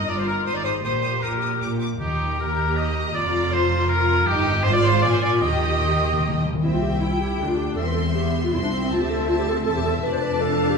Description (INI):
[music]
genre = quick classical-period movement for symphony orchestra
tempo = 158 BPM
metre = 3/4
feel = rubato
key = Eb major, C major from 6.6 s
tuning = A4 = 441 Hz
[part]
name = clear oboe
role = second line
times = 0.0-6.4 s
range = G4 to Eb5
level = -24 LUFS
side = equal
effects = none
[part]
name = rich studio violin section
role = second line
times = 0.0-10.8 s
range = G4 to G5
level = -30 LUFS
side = left 3 dB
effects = none
[part]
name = clear studio viola section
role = accompaniment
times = 0.0-10.8 s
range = B3 to G4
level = -27 LUFS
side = left 2 dB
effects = none
[part]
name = rich studio cello section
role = bass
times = 0.0-10.8 s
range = C2 to Eb3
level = -27 LUFS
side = right 1 dB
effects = none
[part]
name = rich studio double bass section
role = bass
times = 0.0-10.8 s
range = E1 to Eb2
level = -27 LUFS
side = right 2 dB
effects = none
[part]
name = rich studio violin section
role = melody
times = 0.1-10.8 s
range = Eb5 to Eb6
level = -32 LUFS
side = left 2 dB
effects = none
[part]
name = timpani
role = percussion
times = 2.0-2.5, 5.4-6.6 s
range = Eb3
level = -27 LUFS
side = left 1 dB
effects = none
[part]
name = dark clarinet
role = second line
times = 6.6-10.8 s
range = C4 to C5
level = -24 LUFS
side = equal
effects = none
[sound]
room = wet recital hall reverb, RT60 1.7 s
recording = recorded in a church or concert hall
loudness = -19 LUFS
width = side -5 dB against mid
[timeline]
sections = 0.0-6.6 A section; 6.6-10.8 B section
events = timpani fill 5.4-6.6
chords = 0.5 Ab; 0.8 Eb/Bb; 2.0 Eb; 3.1 Bb/F; 4.3 Eb/G; 4.7 Fm/Ab; 5.0 Bb7; 5.4 Eb; 6.6 C; 7.8 C/E; 8.9 D5; 10.0 Dm/F